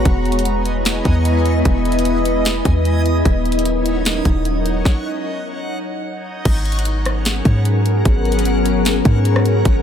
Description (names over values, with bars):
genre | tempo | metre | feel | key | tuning
hip hop, atmospheric cloud-rap | 150 BPM | 4/4 | half-time | G# minor | A4 = 440 Hz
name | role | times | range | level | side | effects
glassy FM pad | sustained chords | 0.0-9.8 s | F#3 to D#5 | -19 LUFS | left 2 dB | ensemble chorus, built-in reverb, sidechain pumping
warm 808-style bass | bass | 0.0-9.8 s | D#1 to G#2 | -18 LUFS | equal | none
trap drum kit | drums | 0.1-9.7 s | crash cymbal, hi-hat, kick drum, rim click, snare drum | -18 LUFS | equal | none
backwards swelling texture | texture | 0.1-9.8 s | B3 to G#5 | -27 LUFS | left 1 dB | built-in reverb
room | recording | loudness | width
little or no reverb | none | -15 LUFS | side -8 dB against mid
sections
0.0-6.5 A section; 6.5-9.8 B section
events
stop 4.9-6.5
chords
0.1 Emaj7; 3.3 D#m7; 6.5 G#m11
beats
| 0.05 0.45 0.85 1.25 | 1.65 2.05 2.45 2.85 | 3.25 3.65 4.05 4.45 | 4.85 5.25 5.65 6.05 | 6.45 6.85 7.25 7.65 | 8.05 8.45 8.85 9.25 | 9.65